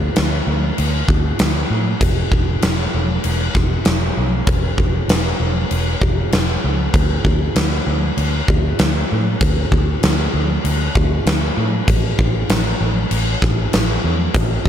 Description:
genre	rock, shoegaze and dream pop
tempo	97 BPM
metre	4/4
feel	straight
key	unclear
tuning	A4 = 445 Hz
part	vintage muted fingered electric bass	bass	0.0-14.7 s	E1 to A2	-19 LUFS	equal	none
part	huge arena drum kit	drums	0.2-14.7 s	crash cymbal, kick drum, snare drum	-17 LUFS	equal	none
room	little or no reverb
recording	none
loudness	-15 LUFS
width	side -9 dB against mid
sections	0.0-14.7 A section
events	none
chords	none

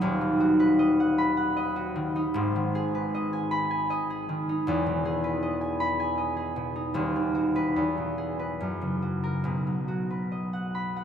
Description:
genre	classical, solo harp piece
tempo	68-80 BPM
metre	3/4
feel	rubato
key	B major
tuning	A4 = 441 Hz
part	concert harp	solo	0.0-11.0 s	D#1 to B5	-25 LUFS	equal	none
room	wet cathedral reverb, RT60 5.9 s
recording	in a vast, echoing space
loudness	-25 LUFS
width	side -8 dB against mid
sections	0.0-11.0 A section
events	none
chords	0.0 B/D#; 2.4 G#m; 4.7 Emaj7; 7.0 B/D#; 7.8 E; 8.6 F#; 9.4 B

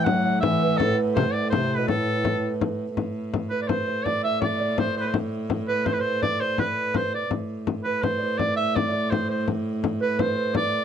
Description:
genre	medieval dance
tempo	166 BPM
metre	3/4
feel	straight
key	A dorian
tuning	A4 = 440 Hz
part	clear shawm	melody	0.0-10.8 s	A4 to F#5	-26 LUFS	equal	none
part	breathy bass clarinet	second line	0.0-2.6 s	A2 to F#3	-26 LUFS	left 4 dB	none
part	concert harp	second line	0.0-10.8 s	A4 to G5	-29 LUFS	right 6 dB	none
part	clear viola da gamba	drone	0.0-10.8 s	A2	-29 LUFS	right 1 dB	stereo widening
part	frame drum	percussion	0.1-10.8 s	none	-27 LUFS	left 6 dB	none
room	little or no reverb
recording	dry, close 1970s-style studio recording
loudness	-22 LUFS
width	side -8 dB against mid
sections	0.0-3.0 A section; 3.0-10.8 B section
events	none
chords	none

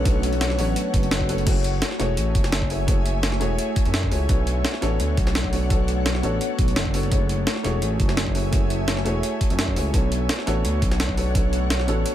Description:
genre	liquid drum and bass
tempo	170 BPM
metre	4/4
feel	straight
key	F# minor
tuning	A4 = 441 Hz
part	felt-muted upright piano	accompaniment	0.0-12.1 s	D3 to C#5	-28 LUFS	equal	tape echo
part	ethereal airy pad	sustained chords	0.0-12.1 s	A3 to G#5	-30 LUFS	left 1 dB	ensemble chorus, built-in reverb, sidechain pumping
part	vibraphone with soft mallets	arpeggios	0.0-1.5 s	F#3 to C#5	-31 LUFS	equal	ping-pong delay
part	smooth gliding synth bass	bass	0.0-12.0 s	E1 to F#2	-24 LUFS	equal	none
part	breakbeat sampler-style drum kit	drums	0.1-12.1 s	crash cymbal, hi-hat, snare drum	-27 LUFS	equal	none
part	electronic kick drum	drums	0.1-11.4 s	none	-22 LUFS	equal	overdrive
room	little or no reverb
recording	none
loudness	-20 LUFS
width	side -12 dB against mid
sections	0.0-1.5 A section; 1.5-12.1 A section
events	drop 0.0-1.5, 1.5-12.1; band accent 1.1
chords	0.0 Bm9; 1.5 F#m9; 4.3 Bm9; 7.1 F#m9; 9.9 Bm9

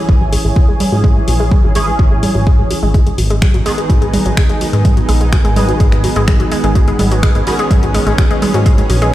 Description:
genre	melodic techno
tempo	126 BPM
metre	4/4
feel	straight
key	G# minor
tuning	A4 = 441 Hz
part	sync-sweep polysynth	stabs	0.0-9.1 s	D#3 to G#4	-19 LUFS	right 1 dB	ensemble chorus, sidechain pumping, dub echo
part	analog pluck	arpeggios	0.1-9.1 s	F#3 to G#3	-20 LUFS	left 1 dB	chorus, sidechain pumping, dub echo
part	fat analog bass	bass	0.1-9.1 s	G#1 to G#2	-15 LUFS	equal	sidechain pumping
part	electronic kick drum	drums	0.1-8.8 s	none	-12 LUFS	equal	none
part	punchy analog drum machine	drums	0.1-9.1 s	congas, finger snaps, hi-hat	-21 LUFS	right 1 dB	overdrive
part	lush unison pad	sustained chords	3.2-9.1 s	G#3 to D#4	-23 LUFS	right 1 dB	chorus, phaser, vintage 12-bit sampler grit, sidechain pumping
room	little or no reverb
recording	played on a big sound system in a bare room, stone room reverb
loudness	-10 LUFS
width	side -14 dB against mid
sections	0.0-9.1 A section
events	filter sweep on synth arpeggio sound 0.0-9.1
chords	0.0 C#m/G#; 2.9 G#m

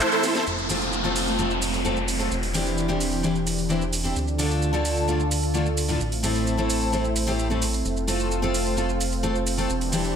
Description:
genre	EDM, festival progressive house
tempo	130 BPM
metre	4/4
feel	straight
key	unclear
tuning	A4 = 441 Hz
part	lush unison pad	sustained chords	0.0-10.2 s	D3 to A4	-28 LUFS	right 1 dB	chorus
part	house drum kit	drums	0.0-10.1 s	handclaps, hi-hat, shaker, snare drum	-30 LUFS	right 2 dB	none
part	fat analog bass	bass	0.5-10.2 s	E1 to D2	-28 LUFS	equal	none
part	downlifter	sound effects	0.5-4.2 s	none	-30 LUFS	equal	none
part	picked steel-string acoustic guitar	accompaniment	0.7-10.2 s	A2 to A4	-26 LUFS	left 2 dB	digital delay
room	moderate digital room reverb, RT60 1.1 s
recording	none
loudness	-22 LUFS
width	side -7 dB against mid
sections	0.5-10.2 A section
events	break 0.0-0.5; band accent 0.0; drum fill 0.2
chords	0.5 F; 2.3 Cadd9/E; 4.2 Dm; 6.0 Am; 7.9 F

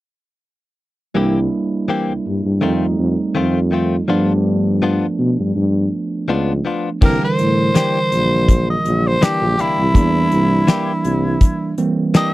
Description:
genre	straight-eighth soul blues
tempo	82 BPM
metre	4/4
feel	swing 54% on 16ths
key	C mixolydian from 7.0 s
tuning	A4 = 441 Hz
part	overdriven tine electric piano	accompaniment	1.1-12.3 s	D3 to Bb4	-20 LUFS	right 3 dB	none
part	direct-recorded clean electric guitar	stabs	1.1-12.3 s	Eb3 to G4	-21 LUFS	left 5 dB	none
part	mellow tuba	bass	1.2-11.4 s	Bb1 to B2	-18 LUFS	left 1 dB	none
part	raspy tenor saxophone	melody	7.0-12.3 s	E4 to Eb5	-19 LUFS	equal	none
part	damped 70s drum kit	drums	7.0-12.3 s	crash cymbal, hi-hat, kick drum, snare drum	-13 LUFS	equal	none
room	little or no reverb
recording	dry, close 1970s-style studio recording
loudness	-14 LUFS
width	side -17 dB against mid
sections	1.2-7.0 A section; 7.0-12.3 B section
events	none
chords	1.2 C7; 2.6 F7; 4.1 G7; 7.0 C9

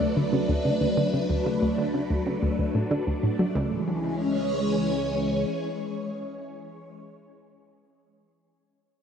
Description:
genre	ambient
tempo	93 BPM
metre	4/4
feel	straight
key	C# phrygian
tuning	A4 = 440 Hz
part	phased string machine	sustained chords	0.0-6.9 s	E3 to D5	-26 LUFS	equal	ensemble chorus, phaser
part	analog pluck	riff	0.0-3.9 s	C#2 to F#3	-26 LUFS	equal	chorus, analog delay
part	fat analog bass	bass	0.0-5.4 s	C#2 to D2	-41 LUFS	equal	none
room	wet plate reverb, RT60 2.9 s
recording	echo-heavy mix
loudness	-24 LUFS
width	side -7 dB against mid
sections	0.0-3.6 A section; 3.6-6.1 B section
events	filter sweep on synth arpeggio sound 0.0-3.6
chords	0.0 D; 3.6 C#m

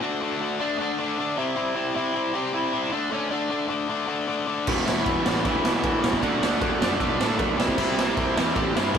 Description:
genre	punk rock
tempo	155 BPM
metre	4/4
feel	straight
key	unclear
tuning	A4 = 440 Hz
part	overdriven semi-hollow guitar	melody	0.0-9.0 s	C#4 to G5	-29 LUFS	right 1 dB	none
part	distorted electric guitar	riff	0.0-9.0 s	E2 to D4	-26 LUFS	left 4 dB	overdrive
part	distorted electric guitar	riff	4.7-9.0 s	E2 to D4	-28 LUFS	right 5 dB	overdrive
part	fuzz picked electric bass	bass	4.7-9.0 s	E1 to A2	-30 LUFS	right 1 dB	overdrive
part	raw garage drum kit	drums	4.7-9.0 s	crash cymbal, kick drum, ride cymbal, snare drum	-25 LUFS	right 1 dB	none
room	light reverb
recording	rough rehearsal-room recording, tube saturation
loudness	-22 LUFS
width	side -7 dB against mid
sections	0.0-9.0 A section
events	none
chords	0.0 D; 1.4 C; 2.9 D5; 4.7 E5; 6.2 D; 7.6 C

